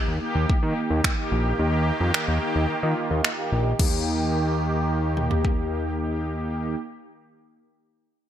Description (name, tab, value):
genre	dance-pop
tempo	109 BPM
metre	4/4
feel	straight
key	Eb major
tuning	A4 = 445 Hz
part	mellow synth brass	accompaniment	0.0-6.8 s	Bb3 to G4	-28 LUFS	equal	chorus, phaser, sidechain pumping
part	sweeping resonant pad	sustained chords	0.0-6.8 s	Eb3 to G4	-30 LUFS	right 1 dB	chorus, sidechain pumping
part	fat analog bass	bass	0.1-6.8 s	Bb1 to Eb3	-24 LUFS	equal	sidechain pumping
part	deep house drum kit	drums	0.5-5.6 s	crash cymbal, finger snaps, kick drum, toms	-25 LUFS	equal	none
room	moderate plate reverb, RT60 1.9 s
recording	bright 1980s-style digital production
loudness	-22 LUFS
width	side -10 dB against mid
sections	0.0-3.8 A section; 3.8-6.0 B section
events	none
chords	0.0 Eb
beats	0.49 1.04 | 1.59 2.14 2.69 3.24 | 3.79 4.34 4.89 5.45